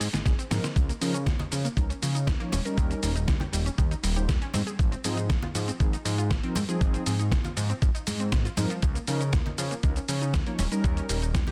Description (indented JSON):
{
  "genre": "nu-disco, nu disco",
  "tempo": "119 BPM",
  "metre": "4/4",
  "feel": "straight",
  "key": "Ab major",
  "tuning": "A4 = 440 Hz",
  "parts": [
    { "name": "analog pluck", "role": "arpeggios", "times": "0.0-11.5 s", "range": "F3 to Bb4", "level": "-40 LUFS", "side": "equal", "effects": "chorus, cassette tape, sidechain pumping, delay" },
    { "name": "fat analog bass", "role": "bass", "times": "0.0-11.4 s", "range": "Eb1 to Db3", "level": "-31 LUFS", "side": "equal", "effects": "none" },
    { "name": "dusty soul sampler-style drum kit", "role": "drums", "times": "0.0-11.5 s", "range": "hi-hat, shaker, snare drum", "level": "-35 LUFS", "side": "equal", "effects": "studio reverb" },
    { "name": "electronic kick drum", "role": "drums", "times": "0.3-11.4 s", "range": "none", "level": "-28 LUFS", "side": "equal", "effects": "studio reverb" },
    { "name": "mellow synth brass", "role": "accompaniment", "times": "0.5-11.2 s", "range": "F3 to Db5", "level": "-36 LUFS", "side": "equal", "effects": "chorus, sidechain pumping, dub echo" },
    { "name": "congas", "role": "percussion", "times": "1.4-11.5 s", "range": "none", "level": "-38 LUFS", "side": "equal", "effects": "none" }
  ],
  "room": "light reverb, digital ambience",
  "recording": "dense, heavily limited modern master",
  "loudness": "-27 LUFS",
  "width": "mono",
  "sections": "0.0-11.5 A section",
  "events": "drum fill 0.0-0.8",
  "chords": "0.0 Ab6; 0.8 Db69; 2.5 Eb7; 4.5 Ab6; 8.8 Db69; 10.6 Eb7",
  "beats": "0.25 | 0.76 1.26 1.77 2.27 | 2.77 3.28 3.78 4.29 | 4.79 5.30 5.80 6.30 | 6.81 7.31 7.82 8.32 | 8.82 9.33 9.83 10.34 | 10.84 11.35"
}